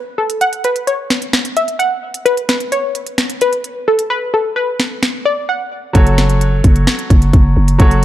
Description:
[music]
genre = hip hop, trap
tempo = 130 BPM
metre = 4/4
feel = half-time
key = unclear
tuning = A4 = 439 Hz
[part]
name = warbly dusty pluck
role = melody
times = 0.0-5.9 s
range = A4 to F#5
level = -16 LUFS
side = left 1 dB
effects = chorus
[part]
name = trap drum kit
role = drums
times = 0.3-8.0 s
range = finger snaps, hi-hat, kick drum, snare drum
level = -14 LUFS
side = equal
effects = none
[part]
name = bright grand piano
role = accompaniment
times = 5.9-8.0 s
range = F#3 to C#5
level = -19 LUFS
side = right 1 dB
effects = none
[part]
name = growling 808-style bass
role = bass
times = 6.0-8.0 s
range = F#1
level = -12 LUFS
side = equal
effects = none
[sound]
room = light reverb, digital ambience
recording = dark, warm production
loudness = -12 LUFS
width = side -13 dB against mid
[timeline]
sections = 0.0-8.0 A section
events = break 0.0-6.0; hi-hats muted 4.1-6.0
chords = 0.0 N.C.; 6.0 F#m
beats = | 0.41 0.87 1.33 1.80 | 2.26 2.72 3.18 3.64 | 4.10 4.57 5.03 5.49 | 5.95 6.41 6.87 7.33 | 7.80

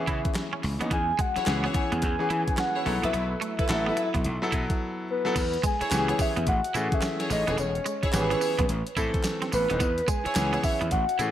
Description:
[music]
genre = R&B, new jack swing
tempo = 108 BPM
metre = 4/4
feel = swing 63% on 16ths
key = E major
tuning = A4 = 441 Hz
[part]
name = soft octave-layered synth lead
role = melody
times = 0.0-11.3 s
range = B4 to G#5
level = -29 LUFS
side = equal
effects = chorus, phaser
[part]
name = bright baby grand piano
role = accompaniment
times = 0.0-11.3 s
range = E3 to A4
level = -31 LUFS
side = left 2 dB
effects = none
[part]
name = twangy electric guitar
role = riff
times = 0.1-11.3 s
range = G#3 to E4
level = -35 LUFS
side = right 6 dB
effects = wide subtle chorus
[part]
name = gritty slap bass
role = bass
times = 0.1-11.3 s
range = D#1 to E3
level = -30 LUFS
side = equal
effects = overdrive
[part]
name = clean 12-bit digital drum machine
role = drums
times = 0.1-11.3 s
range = crash cymbal, handclaps, hi-hat, kick drum, snare drum, tambourine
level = -30 LUFS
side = equal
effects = overdrive
[part]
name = warm studio string section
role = stabs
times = 1.4-10.7 s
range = E4 to C#5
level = -34 LUFS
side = equal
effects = tape echo
[sound]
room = moderate digital room reverb, RT60 1.2 s, digital ambience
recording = none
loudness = -24 LUFS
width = side -11 dB against mid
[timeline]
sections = 0.0-5.4 A section; 5.4-11.3 B section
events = drums muted 4.8-5.4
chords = 0.0 C#m7; 0.9 E6; 2.9 B7sus4; 5.4 E6; 6.5 Amaj7; 7.6 E6; 8.7 Am; 9.8 E6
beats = 0.36 | 0.91 1.47 2.02 2.58 | 3.13 3.69 4.25 4.80 | 5.36 5.91 6.47 7.02 | 7.58 8.13 8.69 9.25 | 9.80 10.36 10.91

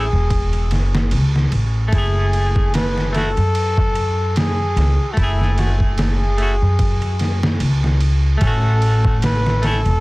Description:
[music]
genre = trip hop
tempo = 74 BPM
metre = 4/4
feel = swing 56% on 16ths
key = F# minor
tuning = A4 = 437 Hz
[part]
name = trumpet with bucket mute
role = melody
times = 0.0-10.0 s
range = E4 to B4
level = -24 LUFS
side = left 1 dB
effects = tape echo
[part]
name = clean electric guitar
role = accompaniment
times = 0.0-9.8 s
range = A3 to G#4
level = -26 LUFS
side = equal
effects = harmonic tremolo, low-pass filter, tape echo
[part]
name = upright bass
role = bass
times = 0.0-10.0 s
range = E1 to F#2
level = -17 LUFS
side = equal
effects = none
[part]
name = trip hop sampler-style drum kit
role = drums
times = 0.3-10.0 s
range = kick drum, ride cymbal, snare drum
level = -21 LUFS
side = equal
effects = overdrive
[sound]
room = little or no reverb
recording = dense, heavily limited modern master, vinyl crackle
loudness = -15 LUFS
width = side -22 dB against mid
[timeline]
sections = 0.0-10.0 A section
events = none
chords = 0.0 A6; 1.9 F#m9; 8.4 A6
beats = 0.31 1.12 | 1.93 2.74 3.55 4.36 | 5.17 5.98 6.79 7.60 | 8.41 9.22

